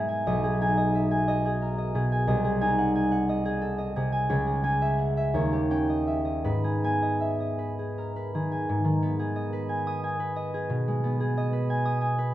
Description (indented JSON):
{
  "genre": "classical, solo harp piece",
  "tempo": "52-62 BPM (dotted quarters)",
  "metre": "6/8",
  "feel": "rubato",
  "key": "G# minor",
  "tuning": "A4 = 439 Hz",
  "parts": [
    { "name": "concert harp", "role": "solo", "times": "0.0-12.3 s", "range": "B1 to D#6", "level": "-24 LUFS", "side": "equal", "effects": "none" }
  ],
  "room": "moderate recital hall reverb, RT60 1.4 s",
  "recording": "none",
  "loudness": "-24 LUFS",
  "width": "side -13 dB against mid",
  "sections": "0.0-8.7 A section; 8.7-12.3 B section",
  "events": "none",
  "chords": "0.3 G#m/B; 2.3 G#7/B#; 4.3 C#m; 5.4 D#7; 6.5 G#m; 10.7 G#m/B"
}